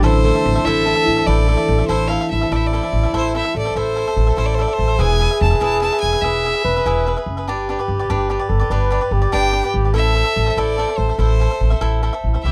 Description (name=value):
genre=mexican folk, mariachi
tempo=97 BPM (dotted quarters)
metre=6/8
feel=straight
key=A minor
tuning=A4 = 440 Hz
part: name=bright violin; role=melody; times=0.0-7.1, 9.3-12.5 s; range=C5 to A5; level=-24 LUFS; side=equal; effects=none
part: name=dark trumpet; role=second line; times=0.0-12.5 s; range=C4 to B4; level=-24 LUFS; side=equal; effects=none
part: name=cavaquinho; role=accompaniment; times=0.0-12.5 s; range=D4 to E5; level=-27 LUFS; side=equal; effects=none
part: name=concert harp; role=arpeggios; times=0.0-4.9 s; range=E3 to E5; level=-24 LUFS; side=equal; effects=none
part: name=upright bass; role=bass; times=0.0-12.5 s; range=E1 to C2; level=-21 LUFS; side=equal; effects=none
room=little or no reverb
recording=dry, close 1970s-style studio recording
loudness=-18 LUFS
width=mono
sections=0.0-2.5 A section; 2.5-12.4 A section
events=none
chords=0.0 Am; 5.0 E; 7.5 G; 9.9 Am